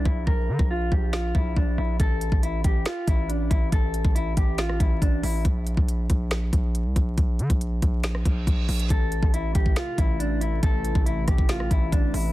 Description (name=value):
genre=hip hop, trap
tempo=139 BPM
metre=4/4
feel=half-time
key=A phrygian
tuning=A4 = 439 Hz
part: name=mellow electric guitar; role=melody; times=0.0-5.4, 8.9-12.3 s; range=D4 to Bb4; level=-30 LUFS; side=left 1 dB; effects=tape echo
part: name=distorted 808-style bass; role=bass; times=0.0-12.3 s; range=A1 to D3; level=-26 LUFS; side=equal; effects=distortion
part: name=trap drum kit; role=drums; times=0.1-12.2 s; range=finger snaps, hi-hat, kick drum, rim click, snare drum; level=-23 LUFS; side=equal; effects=none
part: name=reverse cymbal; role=sound effects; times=8.2-8.9 s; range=none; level=-36 LUFS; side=right 8 dB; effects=none
part: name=dark analog pad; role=sustained chords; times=9.6-12.3 s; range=C3 to E4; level=-35 LUFS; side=equal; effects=chorus
room=little or no reverb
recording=dense, heavily limited modern master, vinyl crackle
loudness=-21 LUFS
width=side -16 dB against mid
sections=0.0-8.9 A section; 8.9-12.3 B section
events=break 0.0-2.0; reverse cymbal 8.2-8.9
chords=0.0 Bb5; 2.0 A5; 5.4 N.C.; 8.9 Am